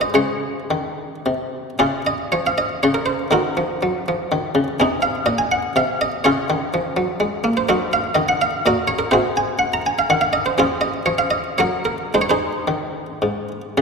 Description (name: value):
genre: classical, baroque-style suite movement for harpsichord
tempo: 104-127 BPM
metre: 3/4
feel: rubato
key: Db major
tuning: A4 = 435 Hz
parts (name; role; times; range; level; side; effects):
- buff-stop harpsichord; solo; 0.0-13.8 s; Ab2 to Bb5; -18 LUFS; equal; none
room: wet church reverb, RT60 2.9 s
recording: none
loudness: -18 LUFS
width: side -4 dB against mid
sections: 0.0-1.8 A section; 1.8-13.8 B section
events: none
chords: 0.1 Db5; 1.8 Db; 3.3 Ebm7; 4.8 Bb9sus4; 6.2 Db; 7.7 Ebm; 9.1 Ab7/C; 10.6 Db/F; 11.6 Gb; 12.1 Ab